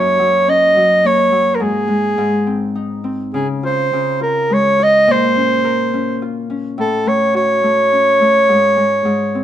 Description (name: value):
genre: children's music, lullaby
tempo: 105 BPM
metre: 3/4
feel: rubato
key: unclear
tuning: A4 = 439 Hz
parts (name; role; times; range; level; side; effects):
- mellow soprano saxophone; melody; 0.0-9.4 s; Ab4 to Eb5; -13 LUFS; right 1 dB; none
- Celtic harp; accompaniment; 0.0-9.4 s; Gb2 to Bb4; -19 LUFS; left 3 dB; none
room: light reverb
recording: band playing live in one room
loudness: -12 LUFS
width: side -11 dB against mid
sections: 0.0-9.4 A section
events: none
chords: 0.0 Gb; 1.6 N.C.; 2.2 Ab; 3.3 Db; 5.1 Bbmadd9; 6.8 Gbm/A; 8.5 N.C.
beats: 0.48 1.04 | 1.61 2.18 2.76 | 3.34 3.92 4.50 | 5.08 5.65 6.21 | 6.78 7.34 7.91 | 8.48 9.05